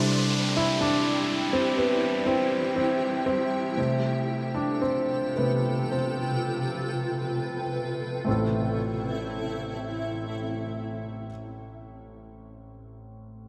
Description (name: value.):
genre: pop.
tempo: 48-63 BPM.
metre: 4/4.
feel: straight.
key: A minor.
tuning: A4 = 440 Hz.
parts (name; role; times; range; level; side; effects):
warm concert grand piano; accompaniment; 0.0-13.5 s; A1 to A4; -29 LUFS; equal; none.
granular cloud pad; sustained chords; 0.0-11.3 s; C3 to G5; -34 LUFS; equal; built-in reverb.
downlifter; sound effects; 0.0-8.3 s; none; -35 LUFS; equal; none.
room: wet lush hall reverb, RT60 2.7 s.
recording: bright 1980s-style digital production.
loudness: -27 LUFS.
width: mono.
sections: 0.0-8.3 A section; 8.3-13.2 B section.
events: slowing down 0.0-8.3; grand piano solo 0.0-8.3.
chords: 0.0 Cadd9; 3.8 Fadd9/C; 8.3 Am.